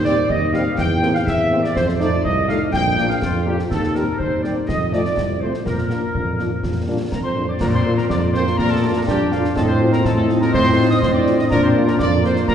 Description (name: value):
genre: military-style march for wind band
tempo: 123 BPM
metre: 2/4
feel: straight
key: Bb major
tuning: A4 = 439 Hz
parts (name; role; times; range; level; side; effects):
- warm trumpet section; melody; 0.0-12.5 s; F4 to G5; -24 LUFS; right 1 dB; none
- warm trombone section; sustained chords; 0.0-12.5 s; G3 to Eb4; -24 LUFS; equal; none
- warm tuba; bass; 0.0-12.5 s; Bb1 to Bb2; -21 LUFS; equal; none
- concert snare drum, concert bass drum and clash cymbals; drums; 0.0-12.5 s; none; -24 LUFS; left 1 dB; none
- warm woodwind section; second line; 0.1-12.5 s; F4 to G5; -26 LUFS; equal; none
- mellow French horn section; accompaniment; 0.1-12.3 s; G3 to G4; -28 LUFS; left 1 dB; none
- mellow euphonium; second line; 6.1-12.5 s; D3 to Eb4; -25 LUFS; right 1 dB; none
- piccolo; second line; 7.1-12.5 s; F5 to Eb6; -27 LUFS; left 1 dB; none
room: wet scoring stage reverb, RT60 1.9 s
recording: heard from further back in the room, nothing above 11.0 kHz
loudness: -16 LUFS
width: side -8 dB against mid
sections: 0.0-7.6 A section; 7.6-12.5 B section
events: none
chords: 0.0 Cm/Eb; 0.8 C7/E; 1.8 F7; 2.7 Bb; 3.7 Cm/Eb; 4.7 F; 5.7 Bb; 9.6 F7/A; 11.5 Bb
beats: 0.29 | 0.78 1.27 | 1.76 2.24 | 2.73 3.22 | 3.71 4.20 | 4.68 5.17 | 5.66 6.15 | 6.63 7.12 | 7.61 8.10 | 8.59 9.07 | 9.56 10.05 | 10.54 11.02 | 11.51 12.00 | 12.49